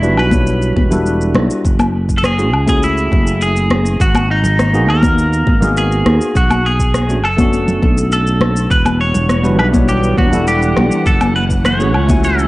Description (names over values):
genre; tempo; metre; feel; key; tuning
sunset chillout; 102 BPM; 4/4; straight; unclear; A4 = 438 Hz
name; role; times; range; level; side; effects
clean electric guitar; melody; 0.0-12.5 s; D#4 to C#5; -18 LUFS; equal; cassette tape, tape echo
bell-like tine electric piano; accompaniment; 0.0-12.5 s; G3 to G#5; -19 LUFS; equal; auto-pan, low-pass filter, cassette tape
concert harp; arpeggios; 0.0-2.3 s; none; barely audible; none; none
sustaining fretless electric bass; bass; 0.0-12.5 s; E1 to D#2; -16 LUFS; equal; none
electronic shaker, woodblock and rim click; drums; 0.0-12.5 s; none; -23 LUFS; equal; cassette tape
electronic kick drum; drums; 0.3-12.2 s; none; -16 LUFS; equal; cassette tape
congas; percussion; 0.3-12.2 s; none; -18 LUFS; left 1 dB; none
soft string machine; sustained chords; 8.7-12.5 s; E3 to G#5; -21 LUFS; equal; phaser, ensemble chorus, cassette tape
room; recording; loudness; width
moderate spring reverb, RT60 1.6 s, digital ambience; home recording on cassette, nothing above 10.4 kHz; -11 LUFS; side -19 dB against mid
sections
0.0-12.5 A section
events
filter sweep on tine electric piano 0.0-12.5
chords
0.0 Em9; 1.6 F#m9; 4.0 G#m9; 6.4 Bm9; 8.7 Em9; 11.1 F#m9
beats
0.47 1.06 | 1.65 2.24 2.83 3.41 | 4.00 4.59 5.18 5.77 | 6.36 6.94 7.53 8.12 | 8.71 9.30 9.88 10.47 | 11.06 11.65 12.24